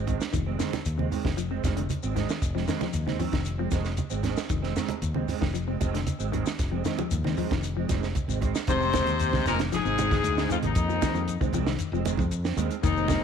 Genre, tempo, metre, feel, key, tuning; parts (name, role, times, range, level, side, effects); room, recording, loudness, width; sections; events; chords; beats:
afrobeat; 115 BPM; 4/4; straight; F dorian; A4 = 440 Hz
electric guitar at the edge of break-up; stabs; 0.0-13.2 s; Eb3 to C4; -33 LUFS; right 12 dB; ensemble chorus
fingered electric bass; bass; 0.0-13.2 s; F1 to F2; -30 LUFS; left 1 dB
compact cocktail drum kit; drums; 0.1-13.2 s; hi-hat, kick drum, snare drum; -31 LUFS; right 2 dB
congas; percussion; 0.1-13.2 s; -33 LUFS; right 5 dB
shekere; percussion; 0.1-13.2 s; -36 LUFS; left 5 dB
semi-hollow electric guitar; arpeggios; 0.3-13.2 s; C3 to F3; -33 LUFS; left 14 dB; wide subtle chorus
clear horn section; melody; 8.7-13.2 s; Eb4 to C5; -28 LUFS; left 2 dB
raspy baritone saxophone; second line; 8.7-13.2 s; Eb2 to C3; -30 LUFS; left 13 dB; slapback echo
light reverb; 1960s-style stereo with parts hard left and right; -25 LUFS; side -7 dB against mid
0.0-8.7 A section; 8.7-13.2 B section
0.0 Fm7
| 0.33 0.85 1.37 1.90 | 2.42 2.94 3.46 3.98 | 4.51 5.03 5.55 6.07 | 6.59 7.11 7.63 8.16 | 8.68 9.20 9.72 10.24 | 10.76 11.28 11.79 12.31 | 12.83